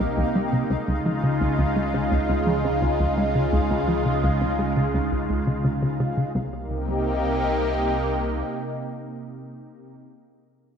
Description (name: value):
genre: ambient, sequencer-driven space music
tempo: 85 BPM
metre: 4/4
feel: straight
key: C phrygian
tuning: A4 = 441 Hz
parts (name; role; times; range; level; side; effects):
- lush unison pad; sustained chords; 0.0-9.9 s; C3 to G4; -24 LUFS; equal; chorus, phaser
- concert harp; arpeggios; 0.0-9.6 s; Bb3 to Ab4; -44 LUFS; right 1 dB; none
- tight sequencer bass; riff; 0.0-6.7 s; C2 to Ab3; -25 LUFS; equal; tape echo
- warm sub bass; bass; 0.0-8.4 s; C2 to Db2; -31 LUFS; equal; none
- pulsing gated texture; texture; 0.0-6.4 s; F5; -40 LUFS; left 2 dB; none
room: moderate plate reverb, RT60 2.2 s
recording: dreamy mix soaked in reverb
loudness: -21 LUFS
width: side -7 dB against mid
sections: 0.0-6.4 A section; 6.4-9.2 B section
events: none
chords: 0.0 Cm7; 0.7 Dbadd9; 6.4 Cm7